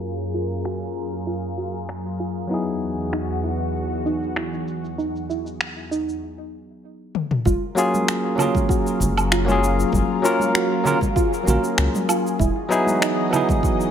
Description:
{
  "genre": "sunset chillout",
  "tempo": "97 BPM",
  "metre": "4/4",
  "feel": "swing 53% on 16ths",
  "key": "F# major",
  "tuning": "A4 = 440 Hz",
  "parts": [
    { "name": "barky tine electric piano", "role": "accompaniment", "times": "0.0-13.9 s", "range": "F#3 to A#4", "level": "-23 LUFS", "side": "moving between left 4 dB and right 4 dB", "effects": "auto-pan, low-pass filter, ping-pong delay" },
    { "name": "lush unison pad", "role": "sustained chords", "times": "0.0-13.9 s", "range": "E2 to D#5", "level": "-27 LUFS", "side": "left 1 dB", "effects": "chorus, phaser" },
    { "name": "deep house drum kit", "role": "drums", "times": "0.0-13.9 s", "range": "cabasa, finger snaps, toms, woodblock", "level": "-24 LUFS", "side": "left 1 dB", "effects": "studio reverb" },
    { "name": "soft round pluck", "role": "arpeggios", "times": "0.3-13.5 s", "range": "D#4 to F#4", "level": "-28 LUFS", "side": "right 3 dB", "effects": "wide subtle chorus, ping-pong delay" },
    { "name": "round analog bass", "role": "bass", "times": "7.5-12.5 s", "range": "E1 to C#2", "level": "-22 LUFS", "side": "equal", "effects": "none" },
    { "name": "electronic kick drum", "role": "drums", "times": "7.5-13.8 s", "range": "none", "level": "-23 LUFS", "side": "equal", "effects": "studio reverb" },
    { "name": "congas", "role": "percussion", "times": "7.5-13.6 s", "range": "none", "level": "-29 LUFS", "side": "right 2 dB", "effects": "none" }
  ],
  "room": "moderate plate reverb, RT60 1.5 s",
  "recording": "low-pass filter",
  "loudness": "-20 LUFS",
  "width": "side -8 dB against mid",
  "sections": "0.0-7.5 A section; 7.5-13.9 B section",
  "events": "filter sweep on tine electric piano 0.0-7.5; filter sweep on synth pluck 0.0-7.5; filter sweep 0.0-7.5; break 6.2-7.5; drum fill 7.1-7.5",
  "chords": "0.0 F#maj9; 2.5 Emaj9; 7.5 F#maj9; 12.4 Emaj9",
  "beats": "| 0.03 0.65 1.27 1.89 | 2.50 3.12 3.74 4.36 | 4.98 5.60 6.22 6.83 | 7.45 8.07 8.69 9.31 | 9.93 10.55 11.16 11.78 | 12.40 13.02 13.64"
}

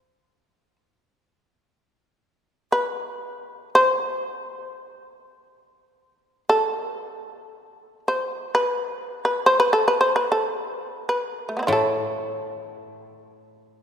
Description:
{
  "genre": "japanese traditional, Japanese chamber music",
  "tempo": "free time",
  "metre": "none",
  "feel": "none",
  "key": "unclear",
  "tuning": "A4 = 439 Hz",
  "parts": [
    { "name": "shamisen", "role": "melody", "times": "0.0-13.8 s", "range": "A3 to E5", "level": "-21 LUFS", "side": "equal", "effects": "none" },
    { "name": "koto", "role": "accompaniment", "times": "11.7-13.8 s", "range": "A2", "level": "-26 LUFS", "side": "left 1 dB", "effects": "none" }
  ],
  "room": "wet church reverb, RT60 2.9 s",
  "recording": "minimal, uncompressed stereo recording",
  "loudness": "-21 LUFS",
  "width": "side -8 dB against mid",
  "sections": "0.0-13.8 A section",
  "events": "slowing down 11.0-13.8",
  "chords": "none",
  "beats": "free time"
}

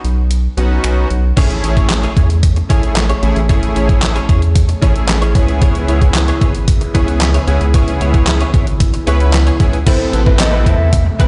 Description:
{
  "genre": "dance-pop",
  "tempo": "113 BPM",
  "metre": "4/4",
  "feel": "straight",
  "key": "unclear",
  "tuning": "A4 = 440 Hz",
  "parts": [
    { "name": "round analog bass", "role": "bass", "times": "0.0-11.3 s", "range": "G#1 to E2", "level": "-17 LUFS", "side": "equal", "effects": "sidechain pumping" },
    { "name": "detuned 8-bit digital drum machine", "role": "drums", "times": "0.0-11.3 s", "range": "crash cymbal, finger snaps, handclaps, hi-hat, kick drum, snare drum", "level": "-16 LUFS", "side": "equal", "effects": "none" },
    { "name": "big bright polysynth", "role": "accompaniment", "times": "0.6-11.3 s", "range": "A3 to B4", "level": "-23 LUFS", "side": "equal", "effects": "chorus, sidechain pumping" },
    { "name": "airy breathy pad", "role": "sustained chords", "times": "1.4-11.3 s", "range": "C3 to G#4", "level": "-27 LUFS", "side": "equal", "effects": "chorus, phaser, sidechain pumping" },
    { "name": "direct-recorded clean electric guitar", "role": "riff", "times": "1.4-11.3 s", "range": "A3 to C#5", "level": "-26 LUFS", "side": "equal", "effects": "ensemble chorus" },
    { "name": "hollow clarinet-like synth lead", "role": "melody", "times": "9.9-11.2 s", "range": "B4 to E5", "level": "-22 LUFS", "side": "equal", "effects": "chorus, dub echo" },
    { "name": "downlifter", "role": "sound effects", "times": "9.9-11.3 s", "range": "none", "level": "-27 LUFS", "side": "equal", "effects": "none" },
    { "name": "group handclap", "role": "percussion", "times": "10.4-10.5 s", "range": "none", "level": "-31 LUFS", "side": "equal", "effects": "none" }
  ],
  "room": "light reverb, digital ambience",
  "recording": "played on a big sound system in a bare room, stone room reverb, nothing above 10.9 kHz",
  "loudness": "-13 LUFS",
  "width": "mono",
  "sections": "0.0-1.4 A section; 1.4-9.9 B section; 9.9-11.3 C section",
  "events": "none",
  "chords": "0.0 Badd9; 1.4 Amaj7; 5.4 C#m7; 9.9 Amadd9",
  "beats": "0.31 0.84 | 1.37 1.90 2.43 2.96 | 3.49 4.03 4.56 5.09 | 5.62 6.15 6.68 7.21 | 7.74 8.27 8.80 9.34 | 9.87 10.40 10.93"
}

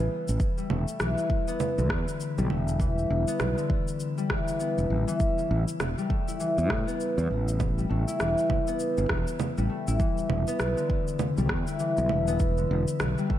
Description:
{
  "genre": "organic downtempo",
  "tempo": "100 BPM",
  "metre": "4/4",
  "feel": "swing 60% on 16ths",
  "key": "E dorian",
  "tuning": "A4 = 440 Hz",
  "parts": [
    { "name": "concert harp", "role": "arpeggios", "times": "0.0-13.4 s", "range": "C#3 to E4", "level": "-28 LUFS", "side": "left 2 dB", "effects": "ping-pong delay, shimmer reverb" },
    { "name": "fretless electric bass", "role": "bass", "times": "0.0-13.1 s", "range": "E1 to A2", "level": "-27 LUFS", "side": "equal", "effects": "sidechain pumping" },
    { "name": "electronic cabasa, congas and rim click", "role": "drums", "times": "0.3-13.3 s", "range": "none", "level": "-33 LUFS", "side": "right 2 dB", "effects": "none" },
    { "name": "electronic kick drum", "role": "drums", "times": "0.4-13.4 s", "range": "none", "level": "-28 LUFS", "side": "equal", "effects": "none" }
  ],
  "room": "light reverb",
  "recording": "none",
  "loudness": "-24 LUFS",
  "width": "side -12 dB against mid",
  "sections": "0.0-13.4 A section",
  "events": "none",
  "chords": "0.4 Em; 5.2 A7; 10.0 Em",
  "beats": "| 0.40 1.00 1.60 2.20 | 2.80 3.40 4.00 4.60 | 5.20 5.80 6.40 7.00 | 7.60 8.20 8.80 9.40 | 10.00 10.60 11.20 11.80 | 12.40 13.00"
}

